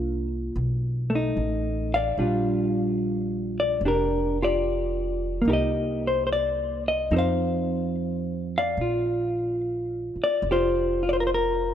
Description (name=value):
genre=jazz ballad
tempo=73 BPM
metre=4/4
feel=swing 68% on 8ths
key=Bb major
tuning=A4 = 440 Hz
part: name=hollow-body jazz guitar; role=accompaniment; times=0.0-11.7 s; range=F3 to F5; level=-24 LUFS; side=equal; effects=none
part: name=upright bass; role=bass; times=0.0-11.7 s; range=F1 to F2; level=-30 LUFS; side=equal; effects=none
room=moderate plate reverb, RT60 3.1 s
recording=rough home demo mix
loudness=-23 LUFS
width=side -9 dB against mid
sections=0.0-8.8 A section; 8.8-11.7 A section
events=none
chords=0.0 C9sus4; 0.5 B7; 2.2 Bb6; 5.5 Cm7; 7.1 F7(no3); 8.8 Bb6